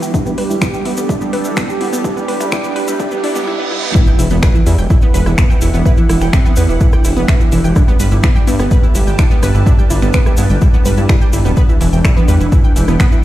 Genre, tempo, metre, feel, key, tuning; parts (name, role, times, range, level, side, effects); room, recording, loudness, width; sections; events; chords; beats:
melodic techno; 126 BPM; 4/4; straight; E minor; A4 = 440 Hz
analog synth brass; melody; 0.0-13.2 s; E3 to E4; -21 LUFS; right 1 dB; chorus, sidechain pumping, digital delay
evolving wavetable pad; sustained chords; 0.0-13.2 s; B3 to A5; -27 LUFS; right 2 dB; phaser, built-in reverb, sidechain pumping
wide unison pluck; arpeggios; 0.0-13.2 s; B3 to G5; -22 LUFS; right 1 dB; cassette tape, sidechain pumping, tape echo
brassy analog pad; stabs; 0.0-3.4 s; E3 to G4; -21 LUFS; right 4 dB; chorus, sidechain pumping, tape echo
tube shaker; percussion; 0.0-13.2 s; -31 LUFS; left 2 dB
riser, reverse cymbal and impact; sound effects; 0.1-5.9 s; -25 LUFS; right 1 dB
granular cloud pad; texture; 0.0-13.2 s; E3 to B4; -28 LUFS; left 2 dB
electronic kick drum; drums; 0.1-13.1 s; -12 LUFS; equal
deep house drum kit; drums; 0.4-13.1 s; finger snaps, hi-hat, rim click; -24 LUFS; equal; overdrive
dark detuned saw bass; bass; 4.2-13.0 s; D1 to G2; -14 LUFS; equal; sidechain pumping
light reverb; played on a big sound system in a bare room, stone room reverb, high-pass filter; -10 LUFS; side -14 dB against mid
0.0-4.0 A section; 4.0-13.2 B section
build-up 0.0-4.0; filter sweep on synth arpeggio sound 0.0-4.0; filter sweep on analog polysynth 0.0-4.0; filter sweep on analog synth pad 0.0-4.0; filter sweep 0.0-4.0; riser 0.1-4.0; reverse cymbal 3.0-4.0; drop 4.0-13.2; impact 4.0-5.9
0.1 Gadd9; 4.0 Emadd9; 7.8 Gadd9; 11.6 Emadd9
| 0.14 0.62 1.09 1.57 | 2.04 2.52 3.00 3.47 | 3.95 4.43 4.90 5.38 | 5.86 6.33 6.81 7.28 | 7.76 8.24 8.71 9.19 | 9.66 10.14 10.62 11.09 | 11.57 12.04 12.52 13.00